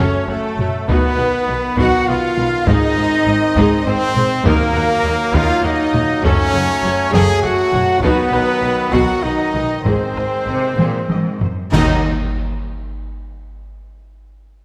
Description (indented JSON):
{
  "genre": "cinematic, epic orchestral film score",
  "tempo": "100 BPM",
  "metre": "3/4",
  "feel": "uneven beats",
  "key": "Eb minor",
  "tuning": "A4 = 440 Hz",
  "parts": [
    { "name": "clear symphonic violin section", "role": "melody", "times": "0.0-12.1 s", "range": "A4 to Ab5", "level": "-30 LUFS", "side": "equal", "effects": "none" },
    { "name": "mellow hollow flute section", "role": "second line", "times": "0.0-12.1 s", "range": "A4 to Ab5", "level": "-28 LUFS", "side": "equal", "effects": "none" },
    { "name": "rich symphonic violin section", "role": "second line", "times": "0.0-12.1 s", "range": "A4 to Ab5", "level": "-32 LUFS", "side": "equal", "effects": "none" },
    { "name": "rich symphonic viola section", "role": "accompaniment", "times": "0.0-12.1 s", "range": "Db4 to Gb5", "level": "-27 LUFS", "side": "equal", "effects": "none" },
    { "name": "bright trombone section", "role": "sustained chords", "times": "0.0-12.0 s", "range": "D#3 to C4", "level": "-28 LUFS", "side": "equal", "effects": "none" },
    { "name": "mellow French horn section", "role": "sustained chords", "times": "0.0-12.0 s", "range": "A3 to Ab4", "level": "-23 LUFS", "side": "equal", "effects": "none" },
    { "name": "clear trumpet", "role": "stabs", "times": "0.0-12.0 s", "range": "A3 to Ab4", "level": "-25 LUFS", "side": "equal", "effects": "none" },
    { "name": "rich symphonic cello section", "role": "bass", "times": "0.0-12.1 s", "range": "Eb2 to C3", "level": "-26 LUFS", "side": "equal", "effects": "none" },
    { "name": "rich symphonic double bass section", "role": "bass", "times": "0.0-12.1 s", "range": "Gb1 to Eb2", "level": "-26 LUFS", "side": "equal", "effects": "none" },
    { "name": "taiko ensemble", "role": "drums", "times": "0.6-12.9 s", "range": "none", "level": "-24 LUFS", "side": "equal", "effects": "none" },
    { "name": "timpani", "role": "percussion", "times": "4.5-5.3, 11.7-12.0 s", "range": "Eb3", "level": "-27 LUFS", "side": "equal", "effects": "none" },
    { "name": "clash cymbals and concert bass drum", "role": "percussion", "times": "11.7-12.9 s", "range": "none", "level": "-27 LUFS", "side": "equal", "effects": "none" }
  ],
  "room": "wet scoring stage reverb, RT60 1.7 s",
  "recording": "none",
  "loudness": "-16 LUFS",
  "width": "mono",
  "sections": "0.0-11.7 A section; 11.7-13.6 B section",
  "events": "drum fill 10.8-11.7; band accent 11.7-12.4",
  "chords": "0.0 Gbm; 0.9 B; 2.7 Ab; 4.5 Ebm; 6.2 Gbm; 8.0 B; 9.8 Ab; 11.7 Ebm",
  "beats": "0.29 | 0.89 1.48 2.08 | 2.67 3.27 3.87 | 4.46 5.05 5.64 | 6.24 6.84 7.43 | 8.02 8.62 9.23 | 9.85 10.47 11.10 | 11.73 12.36"
}